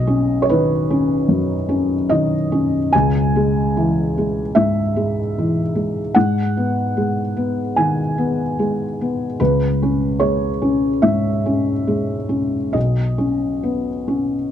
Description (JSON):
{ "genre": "neoclassical minimalist piano", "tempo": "74 BPM", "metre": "4/4", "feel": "rubato", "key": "C# minor", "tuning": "A4 = 440 Hz", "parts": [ { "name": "felt-muted upright piano", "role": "solo", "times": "0.0-14.5 s", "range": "B1 to G#5", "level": "-16 LUFS", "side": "equal", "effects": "none" } ], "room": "little or no reverb", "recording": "dry, close 1970s-style studio recording", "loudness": "-16 LUFS", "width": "side -10 dB against mid", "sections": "0.0-14.5 A section", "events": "none", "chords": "0.0 Badd9; 2.9 C#m; 6.1 G#m; 9.4 C#m; 12.8 Badd9" }